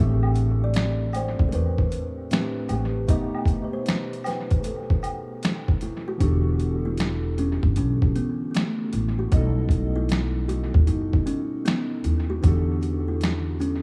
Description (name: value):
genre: lo-fi hip hop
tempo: 77 BPM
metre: 4/4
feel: swing 66% on 16ths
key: E dorian from 6.2 s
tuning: A4 = 443 Hz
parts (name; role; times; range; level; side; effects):
- kalimba; melody; 0.0-13.8 s; A3 to E5; -32 LUFS; equal; analog delay
- warbly lo-fi synth keys; accompaniment; 0.0-13.8 s; A2 to D#5; -33 LUFS; equal; chorus, cassette tape, analog delay
- upright bass; bass; 0.0-13.8 s; E1 to E2; -26 LUFS; equal; none
- woodblock and tube shaker; percussion; 0.2-6.1, 12.4-13.8 s; none; -39 LUFS; equal; analog delay
- boom bap sampler-style drum kit; drums; 0.4-13.8 s; finger snaps, hi-hat, kick drum, snare drum; -26 LUFS; equal; overdrive
room: little or no reverb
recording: echo-heavy mix, small room ambience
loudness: -24 LUFS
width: mono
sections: 0.0-6.2 A section; 6.2-13.8 B section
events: break 3.1-6.2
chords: 0.0 Am11; 3.1 B7b13; 6.2 Em11; 9.3 B7b13; 12.4 Em11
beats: 0.75 1.53 2.31 | 3.09 3.87 4.64 5.42 | 6.20 6.98 7.76 8.54 | 9.32 10.10 10.88 11.66 | 12.44 13.22